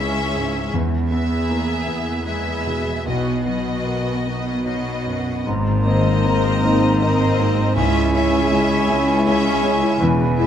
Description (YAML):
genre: cinematic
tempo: 49-54 BPM (dotted quarters)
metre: 6/8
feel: rubato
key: unclear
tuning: A4 = 440 Hz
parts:
  - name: clear studio violin section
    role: melody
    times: 0.0-10.5 s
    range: D#5 to Fb5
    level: -27 LUFS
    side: left 3 dB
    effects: none
  - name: dark studio violin section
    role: second line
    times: 0.0-10.5 s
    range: F#4 to Bb4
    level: -29 LUFS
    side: left 2 dB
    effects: none
  - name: rich studio viola section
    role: accompaniment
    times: 0.0-10.5 s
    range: B3 to Db4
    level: -28 LUFS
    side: right 2 dB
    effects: none
  - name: warm concert grand piano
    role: accompaniment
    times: 0.0-10.5 s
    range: B1 to Bb4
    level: -24 LUFS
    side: equal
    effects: none
  - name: concert harp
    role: arpeggios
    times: 0.0-10.5 s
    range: Ab2 to Bb5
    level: -27 LUFS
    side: left 11 dB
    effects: none
  - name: rich studio cello section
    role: bass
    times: 0.0-10.5 s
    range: Db2 to B2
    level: -24 LUFS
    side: right 2 dB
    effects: none
  - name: mellow French horn section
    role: sustained chords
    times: 5.4-10.5 s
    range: Ab3 to Fb4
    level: -24 LUFS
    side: left 3 dB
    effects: none
  - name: hollow concert flute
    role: second line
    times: 5.5-10.5 s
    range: Ab5 to Bb5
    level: -27 LUFS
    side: equal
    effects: none
  - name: mellow clarinet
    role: second line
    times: 5.5-10.5 s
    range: Eb4 to Fb4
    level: -28 LUFS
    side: right 2 dB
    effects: none
  - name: mellow cor anglais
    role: second line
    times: 5.5-10.5 s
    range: B4 to Db5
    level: -27 LUFS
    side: right 2 dB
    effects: none
  - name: rich studio double bass section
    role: bass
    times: 5.5-10.5 s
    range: E1 to Db2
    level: -23 LUFS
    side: right 3 dB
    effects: none
room: moderate scoring stage reverb, RT60 1.7 s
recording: close, detailed microphones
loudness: -17 LUFS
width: side -9 dB against mid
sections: 0.0-5.5 A section; 5.5-10.5 A section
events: none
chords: 0.0 Dbm; 0.7 E; 3.1 B; 5.5 Abadd9; 7.8 Dbm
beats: | 0.73 1.88 | 3.07 4.26 | 5.47 6.63 | 7.77 8.89 | 10.01